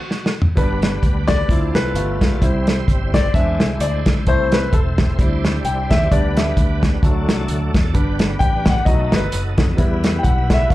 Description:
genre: uptempo gospel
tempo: 130 BPM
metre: 4/4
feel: swing 55% on 8ths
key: G major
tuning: A4 = 440 Hz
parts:
  - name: bright tonewheel organ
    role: sustained chords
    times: 0.0-10.7 s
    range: F3 to C5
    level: -28 LUFS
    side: right 2 dB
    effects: slow rotary speaker, overdrive, chorus vibrato
  - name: warm soul drum kit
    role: drums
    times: 0.1-10.7 s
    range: hi-hat, kick drum, snare drum, toms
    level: -17 LUFS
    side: equal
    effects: none
  - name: clear baby grand piano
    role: accompaniment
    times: 0.6-10.7 s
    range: F3 to G5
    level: -22 LUFS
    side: left 2 dB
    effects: slapback echo
  - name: fingered electric bass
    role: bass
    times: 0.6-10.7 s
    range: E1 to F2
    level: -21 LUFS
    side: equal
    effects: none
room: light reverb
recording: live gig heard through the venue's PA, club ambience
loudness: -15 LUFS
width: side -16 dB against mid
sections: 0.6-10.7 A section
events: band accent 0.0-0.6; drum fill 0.1-0.6; grand piano solo 0.6-10.7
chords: 0.0 N.C.; 0.6 G; 1.5 Dm7; 2.0 G9; 2.4 C; 3.3 E7b13; 4.3 Am/C; 5.2 D9sus4; 6.1 G/D; 7.0 D; 8.0 G; 8.9 B7; 9.8 Em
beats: 0.12 | 0.58 1.04 1.50 1.96 | 2.42 2.89 3.35 3.81 | 4.27 4.73 5.19 5.65 | 6.11 6.57 7.03 7.49 | 7.95 8.41 8.87 9.33 | 9.79 10.25 10.71

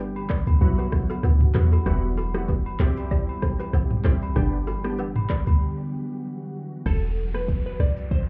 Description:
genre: afrobeats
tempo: 96 BPM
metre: 4/4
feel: swing 55% on 16ths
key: E minor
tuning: A4 = 442 Hz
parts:
  - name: glassy digital keys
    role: accompaniment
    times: 0.0-5.0 s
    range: F#3 to G4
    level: -33 LUFS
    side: equal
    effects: chorus
  - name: glassy FM pad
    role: sustained chords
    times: 0.0-6.8 s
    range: D3 to G4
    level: -36 LUFS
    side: equal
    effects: ensemble chorus, built-in reverb
  - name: balafon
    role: riff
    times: 0.0-5.4 s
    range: E4 to D5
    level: -38 LUFS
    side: equal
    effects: delay
  - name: deep log drum bass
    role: bass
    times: 0.0-8.3 s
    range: E1 to E2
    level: -25 LUFS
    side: equal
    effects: none
  - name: agogo bells and woodblock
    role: percussion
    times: 0.2-5.6 s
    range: none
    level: -41 LUFS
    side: equal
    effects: none
  - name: afro-pop drum kit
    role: drums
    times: 0.3-8.3 s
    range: crash cymbal, handclaps, hi-hat, kick drum, rim click, shaker, toms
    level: -27 LUFS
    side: equal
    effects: overdrive
  - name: glassy wavetable pluck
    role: melody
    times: 6.9-8.3 s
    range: A4 to D5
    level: -35 LUFS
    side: equal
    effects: chorus
  - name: downlifter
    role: sound effects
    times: 6.9-8.3 s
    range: none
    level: -50 LUFS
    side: equal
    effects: none
room: little or no reverb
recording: heard muffled through a wall, club reverb, EQ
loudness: -24 LUFS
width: mono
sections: 0.0-6.9 A section; 6.9-8.3 B section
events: break 5.6-6.9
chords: 0.0 G; 0.6 Bsus4; 1.9 Emadd9; 2.8 C; 4.4 G; 5.6 Bsus4; 6.9 Esus4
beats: 0.61 1.24 | 1.86 2.48 3.11 3.73 | 4.36 4.99 5.61 6.24 | 6.86 7.49 8.11

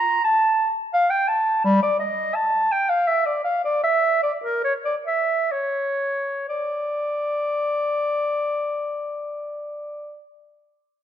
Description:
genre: classical, baroque-style fantasia for unaccompanied clarinet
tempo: 60-89 BPM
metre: 3/4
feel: rubato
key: D minor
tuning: A4 = 440 Hz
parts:
  - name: mellow clarinet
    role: solo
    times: 0.0-10.3 s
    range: G3 to Bb5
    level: -20 LUFS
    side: equal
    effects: none
room: moderate recital hall reverb, RT60 1.4 s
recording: none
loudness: -20 LUFS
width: side -10 dB against mid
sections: 0.0-6.5 A section; 6.5-11.0 B section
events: slowing down 0.6-6.5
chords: none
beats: 0.25 0.93 | 1.64 2.35 3.08 | 3.83 4.64 5.51 | 6.48 7.45 8.40 | 9.36

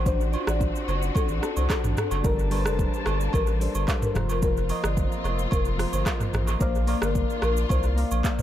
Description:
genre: afrobeats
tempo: 110 BPM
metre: 4/4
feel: straight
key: Bb major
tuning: A4 = 440 Hz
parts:
  - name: buzzing marimba with soft mallets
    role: melody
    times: 0.0-8.4 s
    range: A4 to D5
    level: -32 LUFS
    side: left 5 dB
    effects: dub echo
  - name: soft electric-piano-like synth keys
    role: accompaniment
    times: 0.0-8.4 s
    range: F3 to F5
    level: -31 LUFS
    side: left 1 dB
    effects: chorus, dub echo
  - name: warm studio string section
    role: sustained chords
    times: 0.0-8.4 s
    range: G3 to A5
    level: -35 LUFS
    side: left 2 dB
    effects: none
  - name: saturated sub bass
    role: bass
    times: 0.0-8.2 s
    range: F1 to C2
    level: -26 LUFS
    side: equal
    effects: none
  - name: afro-pop drum kit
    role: drums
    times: 0.1-8.4 s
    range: handclaps, hi-hat, kick drum, rim click, shaker, toms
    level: -27 LUFS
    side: equal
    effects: dub echo
  - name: agogo bells and woodblock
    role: percussion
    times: 0.3-8.4 s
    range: none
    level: -36 LUFS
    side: right 8 dB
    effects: none
room: little or no reverb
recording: echo-heavy mix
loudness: -22 LUFS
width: side -12 dB against mid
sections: 0.0-8.4 A section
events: none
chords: 0.0 D7; 2.2 Gmadd9; 4.2 Fsus4; 6.6 Bb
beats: | 0.06 0.61 1.15 1.70 | 2.24 2.79 3.33 3.88 | 4.43 4.97 5.52 6.06 | 6.61 7.15 7.70 8.24

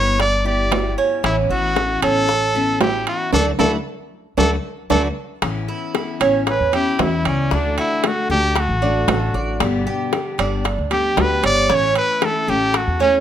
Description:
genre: latin, Cuban son and guajira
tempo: 115 BPM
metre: 4/4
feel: straight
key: unclear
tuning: A4 = 437 Hz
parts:
  - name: brilliant trumpet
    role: melody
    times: 0.0-13.2 s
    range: C#4 to D5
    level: -20 LUFS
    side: equal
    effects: none
  - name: picked steel-string acoustic guitar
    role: accompaniment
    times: 0.0-13.2 s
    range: B2 to G4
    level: -25 LUFS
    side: left 6 dB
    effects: none
  - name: Cuban tres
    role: arpeggios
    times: 0.0-13.2 s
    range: C#4 to D5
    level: -23 LUFS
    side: right 6 dB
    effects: none
  - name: upright bass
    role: bass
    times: 0.0-13.2 s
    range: G1 to E2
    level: -23 LUFS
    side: equal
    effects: none
  - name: bongos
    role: percussion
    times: 0.2-13.2 s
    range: none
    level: -26 LUFS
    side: left 10 dB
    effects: none
  - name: timbales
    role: percussion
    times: 0.2-13.0 s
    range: none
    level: -23 LUFS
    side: right 6 dB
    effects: none
room: light reverb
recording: close, detailed microphones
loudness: -16 LUFS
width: side -10 dB against mid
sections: 0.0-5.4 A section; 5.4-13.2 B section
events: band accent 3.3-5.4; drum fill 4.9-5.4; trumpet solo 5.4-13.2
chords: 0.0 G6; 1.2 Aadd9; 3.3 Dadd9; 5.4 Aadd9; 7.5 D; 9.6 G; 11.7 A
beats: 0.19 0.72 | 1.24 1.76 2.29 2.81 | 3.33 3.86 4.38 4.90 | 5.42 5.95 6.47 6.99 | 7.52 8.04 8.56 9.09 | 9.61 10.13 10.65 11.18 | 11.70 12.22 12.74

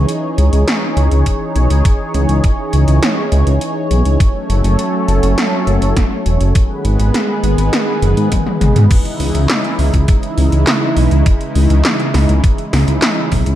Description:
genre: synthwave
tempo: 102 BPM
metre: 4/4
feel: straight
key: C# minor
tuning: A4 = 438 Hz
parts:
  - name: warm analog pad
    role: sustained chords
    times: 0.0-13.6 s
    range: C#3 to C#5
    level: -18 LUFS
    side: equal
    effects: chorus, sidechain pumping
  - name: wide detuned saw bass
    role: bass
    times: 0.0-13.6 s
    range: E1 to G#2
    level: -12 LUFS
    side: equal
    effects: chorus
  - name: 80s electronic pad drums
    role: drums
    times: 0.1-13.6 s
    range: crash cymbal, handclaps, hi-hat, snare drum, toms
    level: -19 LUFS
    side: equal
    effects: gated reverb on snare and toms
  - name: electronic kick drum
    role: drums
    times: 1.3-13.4 s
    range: none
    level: -13 LUFS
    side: equal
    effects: none
room: light reverb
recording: dark, warm production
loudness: -11 LUFS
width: side -12 dB against mid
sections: 0.0-8.9 A section; 8.9-13.6 B section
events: drum fill 8.3-8.9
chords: 0.0 C#madd9; 4.2 F#m; 6.6 G#m; 8.9 C#madd9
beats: 0.08 0.67 1.26 | 1.85 2.44 3.03 3.61 | 4.20 4.79 5.38 5.97 | 6.55 7.14 7.73 8.32 | 8.91 9.50 10.08 10.67 | 11.26 11.85 12.44 13.03

